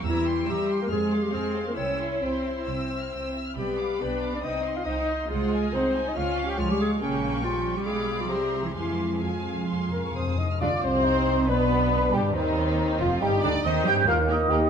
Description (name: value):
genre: quick classical-period movement for symphony orchestra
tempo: 138 BPM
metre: 4/4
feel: rubato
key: F minor, C minor from 10.6 s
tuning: A4 = 445 Hz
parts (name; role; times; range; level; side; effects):
- muted studio violin section; melody; 0.0-14.6 s; Eb4 to F6; -35 LUFS; left 2 dB; none
- muted studio violin section; second line; 0.0-14.6 s; Eb4 to C6; -35 LUFS; left 2 dB; none
- muted symphonic viola section; accompaniment; 0.0-14.6 s; Eb3 to G4; -32 LUFS; right 1 dB; none
- warm clarinet; second line; 0.1-14.7 s; Db4 to G5; -30 LUFS; left 3 dB; none
- muted studio cello section; bass; 0.1-14.7 s; Eb2 to G4; -30 LUFS; right 2 dB; none
- muted studio double bass section; bass; 0.1-14.7 s; F1 to G2; -31 LUFS; right 3 dB; none
- timpani; percussion; 8.8-11.2 s; F2 to C3; -32 LUFS; left 2 dB; none
- mellow hollow large flute ensemble; second line; 9.9-14.7 s; Eb5 to G6; -28 LUFS; right 2 dB; none
- mellow French horn section; sustained chords; 9.9-14.7 s; Eb3 to G4; -30 LUFS; left 5 dB; none
- mellow bassoon; accompaniment; 10.6-14.7 s; Bb3 to G4; -29 LUFS; right 2 dB; none
room: wet recital hall reverb, RT60 1.8 s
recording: none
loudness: -23 LUFS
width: side -7 dB against mid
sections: 0.0-10.6 A section; 10.6-14.7 B section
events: timpani fill 8.8-10.6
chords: 0.1 C7/E; 0.9 Fm; 1.8 C; 3.6 G7/B; 4.4 Cm; 5.3 Ab7/C; 6.2 Db; 7.0 Gdim/Bb; 7.9 Bdim7; 8.3 C7; 8.8 Fm; 10.6 Cm; 11.5 G/B; 12.4 Cm; 14.1 Eb